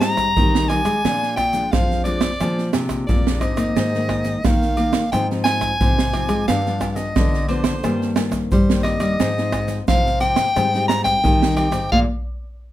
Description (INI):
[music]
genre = samba and choro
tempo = 88 BPM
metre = 4/4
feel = straight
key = unclear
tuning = A4 = 440 Hz
[part]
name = clear soprano saxophone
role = melody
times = 0.0-12.0 s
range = C5 to Bb5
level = -22 LUFS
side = left 1 dB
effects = none
[part]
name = nylon-string guitar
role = accompaniment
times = 0.0-12.0 s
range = F2 to Eb4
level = -24 LUFS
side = left 3 dB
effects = none
[part]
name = nylon-string guitar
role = bass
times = 0.0-12.0 s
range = G2 to Ab3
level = -24 LUFS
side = equal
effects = none
[part]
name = caixa, agogo bells, tube shaker, pandeiro, tamborim and surdo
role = percussion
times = 0.0-12.1 s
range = none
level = -21 LUFS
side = right 1 dB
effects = none
[sound]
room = moderate small room ambience, RT60 0.5 s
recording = none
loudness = -17 LUFS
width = side -13 dB against mid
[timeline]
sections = 0.0-12.7 A section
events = band accent 11.9-12.7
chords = 0.0 Abmaj7; 1.1 Bb7; 3.8 Absus2; 5.1 Fm7/Ab; 6.5 G7; 7.8 Cm7/G; 9.2 Fm7/Ab; 10.6 Abmaj7; 11.9 Bb5